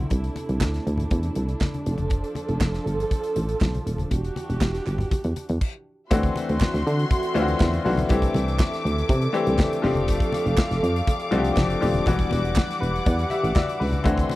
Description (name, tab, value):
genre	disco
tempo	121 BPM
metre	4/4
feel	straight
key	E minor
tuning	A4 = 440 Hz
part	dark studio string section	sustained chords	0.0-14.4 s	C3 to D6	-29 LUFS	right 1 dB	none
part	solid FM bass	bass	0.0-14.2 s	D#1 to D3	-24 LUFS	equal	none
part	modern studio drum kit	drums	0.1-14.4 s	crash cymbal, hi-hat, kick drum, snare drum	-23 LUFS	equal	none
part	congas	percussion	0.1-14.4 s	none	-31 LUFS	left 2 dB	none
part	group handclap	percussion	0.6-13.7 s	none	-37 LUFS	right 9 dB	none
part	bright baby grand piano	accompaniment	6.1-14.4 s	E3 to E5	-25 LUFS	left 3 dB	none
room	little or no reverb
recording	dry, close 1970s-style studio recording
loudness	-21 LUFS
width	side -17 dB against mid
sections	0.0-6.1 A section; 6.1-14.4 B section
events	stop 5.6-6.1; grand piano fill 12.6-14.1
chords	0.1 C69; 1.9 F6; 4.1 Em9; 6.1 D9; 8.1 C69; 9.8 F6; 12.1 Em9